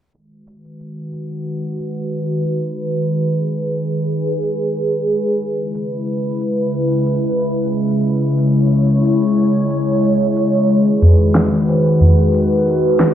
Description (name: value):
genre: organic downtempo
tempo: 91 BPM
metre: 4/4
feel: swing 54% on 16ths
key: G# minor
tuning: A4 = 439 Hz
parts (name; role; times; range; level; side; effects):
- warbly tape-like pad; sustained chords; 0.9-13.1 s; C#3 to C#5; -15 LUFS; equal; chorus, built-in reverb, phaser
- electronic cabasa and snare drum; drums; 0.1-13.1 s; none; -16 LUFS; equal; overdrive, studio ambience
- tabla; percussion; 11.0-13.0 s; none; -14 LUFS; equal; none
room: moderate echo chamber reverb, RT60 1.7 s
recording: played on a big sound system in a bare room, stone room reverb, low-pass filter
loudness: -14 LUFS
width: side -10 dB against mid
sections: 0.1-13.1 A section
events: filter sweep on ambient pad 0.1-13.1; filter sweep 0.1-13.1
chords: 0.1 G#m7; 5.4 C#m7; 10.7 G#m7